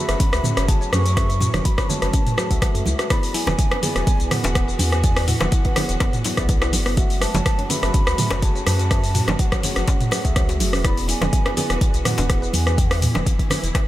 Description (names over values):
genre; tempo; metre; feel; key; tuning
afro house; 124 BPM; 4/4; swing 53% on 16ths; F# minor; A4 = 440 Hz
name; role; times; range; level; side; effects
mellow hollow concert flute; melody; 0.0-13.0 s; F#5 to C#6; -30 LUFS; right 2 dB; analog delay
warm studio string section; sustained chords; 0.0-13.9 s; E3 to F#4; -34 LUFS; left 1 dB; none
mallet-like synth pluck; arpeggios; 0.0-12.5 s; B3 to F#5; -33 LUFS; equal; chorus, sidechain pumping, analog delay
tine electric piano; stabs; 0.0-12.8 s; G#3 to G#5; -31 LUFS; left 2 dB; medium tremolo, sidechain pumping, analog delay
warm sub bass; bass; 0.1-13.7 s; E1 to F#2; -23 LUFS; equal; sidechain pumping
afro-pop drum kit; drums; 0.1-13.9 s; hi-hat, rim click, shaker, toms; -23 LUFS; equal; overdrive
electronic kick drum; drums; 0.2-13.9 s; none; -20 LUFS; equal; none
congas; percussion; 0.2-13.9 s; none; -29 LUFS; right 3 dB; none
djembe; percussion; 3.5-13.9 s; none; -32 LUFS; left 2 dB; none
room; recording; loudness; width
light reverb, digital ambience; none; -17 LUFS; side -14 dB against mid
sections
0.0-13.9 A section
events
none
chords
0.0 F#m9; 3.1 E7; 7.0 F#m9; 10.8 E7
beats
0.20 0.68 | 1.17 1.65 2.13 2.62 | 3.10 3.59 4.07 4.55 | 5.04 5.52 6.01 6.49 | 6.97 7.46 7.94 8.43 | 8.91 9.39 9.88 10.36 | 10.85 11.33 11.81 12.30 | 12.78 13.26 13.75